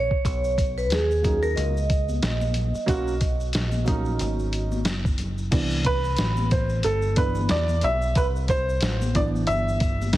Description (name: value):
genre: hip hop, jazz-hop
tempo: 91 BPM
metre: 4/4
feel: swing 57% on 16ths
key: unclear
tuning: A4 = 441 Hz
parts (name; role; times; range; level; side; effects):
- vibraphone with soft mallets; melody; 0.0-4.8 s; Ab4 to D#5; -27 LUFS; right 2 dB; none
- deep dub picked electric bass; bass; 0.0-10.2 s; F#1 to E2; -25 LUFS; equal; none
- lo-fi sampler-style drum kit; drums; 0.1-10.2 s; crash cymbal, hi-hat, kick drum, snare drum; -25 LUFS; equal; none
- maracas and congas; percussion; 0.3-10.1 s; none; -36 LUFS; left 4 dB; none
- dark upright piano; accompaniment; 1.2-10.2 s; E3 to E5; -26 LUFS; right 1 dB; none
room: light reverb, small room ambience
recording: heavily compressed radio sound, multiband compression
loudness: -21 LUFS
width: side -15 dB against mid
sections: 0.0-5.5 A section; 5.5-10.2 B section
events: upright piano solo 5.5-10.2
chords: 0.2 Bmaj9; 5.5 Cmaj9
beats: | 0.25 0.91 1.56 2.22 | 2.88 3.54 4.20 4.86 | 5.52 6.18 6.84 7.50 | 8.16 8.82 9.48 10.14